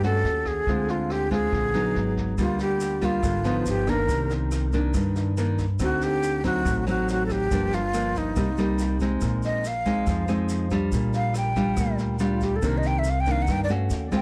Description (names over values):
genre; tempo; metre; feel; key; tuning
bossa nova; 140 BPM; 4/4; straight; C minor; A4 = 440 Hz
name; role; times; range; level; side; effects
breathy mellow silver concert flute; melody; 0.0-14.2 s; Eb4 to G5; -30 LUFS; equal; analog delay
nylon-string guitar; accompaniment; 0.0-14.2 s; G2 to F#4; -28 LUFS; equal; none
upright bass; bass; 0.0-14.2 s; G1 to G2; -31 LUFS; equal; none
jazz brush drum kit; drums; 0.0-14.2 s; kick drum, rim click, snare drum; -35 LUFS; equal; vintage 12-bit sampler grit
tube shaker; percussion; 2.4-14.2 s; none; -47 LUFS; equal; none
room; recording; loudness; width
light reverb; transformer saturation; -25 LUFS; mono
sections
0.0-9.2 A section; 9.2-14.2 B section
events
flute solo 9.2-14.2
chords
0.2 D#m7b5; 0.7 Dm7b5; 2.0 Abm7; 2.4 Gm7/D; 3.7 G7b13; 4.1 Cm9; 5.8 D7b9; 7.5 Gm7; 8.4 Cm7; 9.2 Bb9sus4; 10.9 Gm7/Bb; 12.6 Cm9